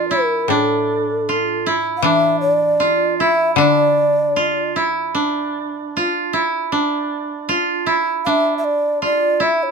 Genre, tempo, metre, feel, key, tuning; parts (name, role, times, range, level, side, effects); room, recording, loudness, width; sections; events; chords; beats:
japanese traditional, Japanese chamber music; 77 BPM; 2/4; rubato; D hirajoshi; A4 = 440 Hz
breathy mellow long shakuhachi; melody; 0.0-4.7, 8.2-9.7 s; A4 to F5; -17 LUFS; equal
koto; second line; 0.0-9.7 s; D4 to F4; -18 LUFS; right 3 dB
koto; accompaniment; 0.0-5.9 s; A2 to E3; -23 LUFS; left 10 dB
light reverb; close, detailed microphones; -15 LUFS; side -5 dB against mid
0.0-9.7 A section
| 0.50 1.27 | 2.03 2.80 | 3.58 4.37 | 5.16 5.95 | 6.73 7.50 | 8.26 9.02